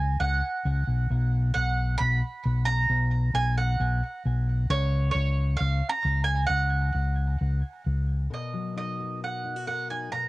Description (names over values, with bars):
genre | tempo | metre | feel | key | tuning
indie folk with a building arrangement | 133 BPM | 4/4 | straight | B major | A4 = 437 Hz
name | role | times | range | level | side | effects
mandolin | melody | 0.0-10.3 s | C#5 to B5 | -29 LUFS | right 3 dB | cassette tape, tape echo
fingered electric bass | bass | 0.0-8.3 s | B1 to C#2 | -24 LUFS | left 1 dB | none
fingerpicked steel-string acoustic guitar | accompaniment | 8.3-10.3 s | B2 to A#4 | -34 LUFS | left 5 dB | cassette tape
room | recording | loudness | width
little or no reverb | home recording on cassette | -24 LUFS | side -20 dB against mid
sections
0.0-8.3 A section; 8.3-10.3 B section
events
none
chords
0.0 F#sus4/C#; 1.1 B5; 4.7 F#5/C#; 8.3 Bmaj7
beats
0.21 0.66 | 1.11 1.56 2.01 2.46 | 2.91 3.36 3.81 4.26 | 4.71 5.16 5.61 6.06 | 6.51 6.96 7.41 7.86 | 8.31 8.77 9.22 9.68 | 10.13